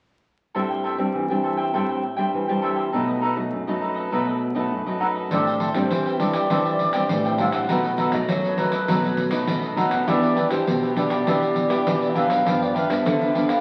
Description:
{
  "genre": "samba and choro",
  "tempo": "101 BPM",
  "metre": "4/4",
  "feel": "straight",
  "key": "A minor",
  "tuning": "A4 = 441 Hz",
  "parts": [
    { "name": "cavaquinho", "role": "accompaniment", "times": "0.5-13.6 s", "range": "D4 to G5", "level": "-29 LUFS", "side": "equal", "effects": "none" },
    { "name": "nylon-string guitar", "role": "accompaniment", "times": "0.6-13.6 s", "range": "F#2 to G4", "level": "-26 LUFS", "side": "equal", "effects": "none" },
    { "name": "mellow baroque flute", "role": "melody", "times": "5.0-13.6 s", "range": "B4 to G5", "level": "-27 LUFS", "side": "equal", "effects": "none" },
    { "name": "nylon-string guitar", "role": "bass", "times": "5.3-13.6 s", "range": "A2 to G3", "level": "-31 LUFS", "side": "equal", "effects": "none" },
    { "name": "pandeiro", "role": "percussion", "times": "5.3-13.6 s", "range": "none", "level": "-30 LUFS", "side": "equal", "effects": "none" }
  ],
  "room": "wet large studio reverb, RT60 1.3 s",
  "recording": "very old 78 rpm record, vinyl crackle",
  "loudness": "-22 LUFS",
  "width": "mono",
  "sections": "0.6-5.3 A section; 5.3-13.6 B section",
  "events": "none",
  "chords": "0.6 Am7; 2.9 B7; 5.3 Am7; 7.7 B7; 10.1 Em7; 12.5 G7"
}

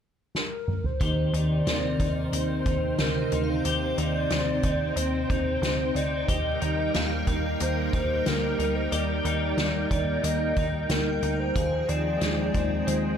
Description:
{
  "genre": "dream pop",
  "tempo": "91 BPM",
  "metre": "4/4",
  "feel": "straight",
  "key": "unclear",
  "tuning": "A4 = 439 Hz",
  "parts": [
    { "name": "soft-mallet drum kit", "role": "drums", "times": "0.3-13.0 s", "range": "hi-hat, kick drum, snare drum, toms", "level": "-30 LUFS", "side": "equal", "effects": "none" },
    { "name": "warbly nostalgic lead", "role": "melody", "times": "0.4-13.2 s", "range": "Bb4 to Eb5", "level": "-31 LUFS", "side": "equal", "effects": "chorus, ping-pong delay" },
    { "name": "soft string machine", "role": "sustained chords", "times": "1.0-13.2 s", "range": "C3 to G5", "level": "-31 LUFS", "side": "right 1 dB", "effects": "ensemble chorus" },
    { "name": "twelve-string electric guitar", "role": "arpeggios", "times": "1.0-13.2 s", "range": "Eb3 to Ab4", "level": "-30 LUFS", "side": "left 2 dB", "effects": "lush chorus, ping-pong delay" },
    { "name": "plucky analog bass", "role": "bass", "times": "1.0-13.2 s", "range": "D2 to Eb2", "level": "-30 LUFS", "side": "equal", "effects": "none" },
    { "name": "shimmering bell with halo", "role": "texture", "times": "1.7-13.0 s", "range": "Eb4 to G5", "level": "-41 LUFS", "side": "right 2 dB", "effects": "ensemble chorus, ping-pong delay" }
  ],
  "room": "light reverb, small room ambience",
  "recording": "none",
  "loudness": "-24 LUFS",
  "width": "side -8 dB against mid",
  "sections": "0.0-1.0 A section; 1.0-13.2 B section",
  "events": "drum fill 0.3-1.0",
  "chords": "0.0 N.C.; 1.0 Cm; 6.3 Eb; 11.6 Fm7"
}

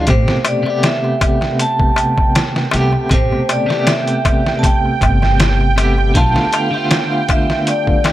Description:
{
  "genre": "trip hop",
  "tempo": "79 BPM",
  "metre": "4/4",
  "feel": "swing 54% on 16ths",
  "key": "A minor",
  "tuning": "A4 = 441 Hz",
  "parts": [
    { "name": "clean electric guitar", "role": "accompaniment", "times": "0.0-8.1 s", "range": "B2 to G4", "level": "-18 LUFS", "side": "equal", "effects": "tremolo, tape echo" },
    { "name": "upright bass", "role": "bass", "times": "0.0-6.3 s", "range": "G1 to C2", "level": "-16 LUFS", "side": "equal", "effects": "tube saturation" },
    { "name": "vibraphone with medium hard mallets", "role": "melody", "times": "0.1-8.1 s", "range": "C5 to A5", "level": "-20 LUFS", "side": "equal", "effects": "vintage 12-bit sampler grit, dub echo" },
    { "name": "dark analog pad", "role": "sustained chords", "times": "1.1-8.1 s", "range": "G5", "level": "-24 LUFS", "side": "right 6 dB", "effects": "chorus, vintage 12-bit sampler grit" },
    { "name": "trip hop sampler-style drum kit", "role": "drums", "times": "0.1-8.1 s", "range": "hi-hat, kick drum, snare drum", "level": "-17 LUFS", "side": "equal", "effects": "overdrive" },
    { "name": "darbuka", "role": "percussion", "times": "0.1-8.1 s", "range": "none", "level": "-23 LUFS", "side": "left 4 dB", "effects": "none" }
  ],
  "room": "small room ambience",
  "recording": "none",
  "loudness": "-12 LUFS",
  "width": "side -14 dB against mid",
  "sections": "0.0-8.1 A section",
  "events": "none",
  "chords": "0.1 Am9; 6.2 Bm7b5"
}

